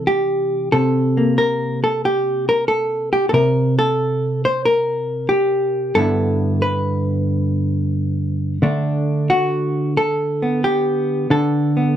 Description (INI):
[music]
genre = solo jazz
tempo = 91 BPM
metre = 4/4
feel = swing 68% on 8ths, rubato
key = unclear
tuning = A4 = 440 Hz
[part]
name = hollow-body jazz guitar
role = solo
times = 0.0-12.0 s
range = G2 to C5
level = -16 LUFS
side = equal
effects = none
[sound]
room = light reverb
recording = dark, warm production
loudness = -16 LUFS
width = side -10 dB against mid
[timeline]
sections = 0.0-12.0 A section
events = none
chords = 0.0 C6; 6.0 G69; 8.6 D6